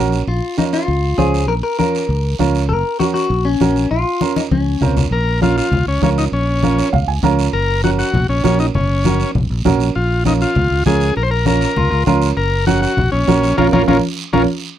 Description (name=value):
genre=latin, cumbia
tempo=198 BPM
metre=4/4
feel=straight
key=Bb minor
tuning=A4 = 443 Hz
part: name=warm upright piano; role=accompaniment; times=0.0-14.4 s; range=Db4 to Bb5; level=-19 LUFS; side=right 8 dB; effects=none
part: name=fingered electric bass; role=bass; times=0.0-14.4 s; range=Gb1 to Db2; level=-18 LUFS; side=equal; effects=none
part: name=guiro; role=percussion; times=0.1-14.4 s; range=none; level=-31 LUFS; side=right 9 dB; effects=none
part: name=clean electric guitar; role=second line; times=0.3-4.9, 11.8-14.4 s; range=Db4 to Bb4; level=-19 LUFS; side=left 4 dB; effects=none
part: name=congas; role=percussion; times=0.3-14.4 s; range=none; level=-21 LUFS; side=left 5 dB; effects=none
part: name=combo organ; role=melody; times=5.1-14.4 s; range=Db4 to C5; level=-18 LUFS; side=left 3 dB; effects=none
room=little or no reverb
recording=dry, close 1970s-style studio recording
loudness=-13 LUFS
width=side -11 dB against mid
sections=0.0-5.1 A section; 5.1-14.8 B section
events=clean electric guitar solo 0.0-5.1; drum fill 4.2-5.1; upright piano fill 6.6-7.5; band accent 13.6-14.8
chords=0.3 Bbm; 2.7 Gb; 3.9 Bbm; 7.5 Gb; 10.0 Bbm; 12.4 Gb; 13.6 Bbm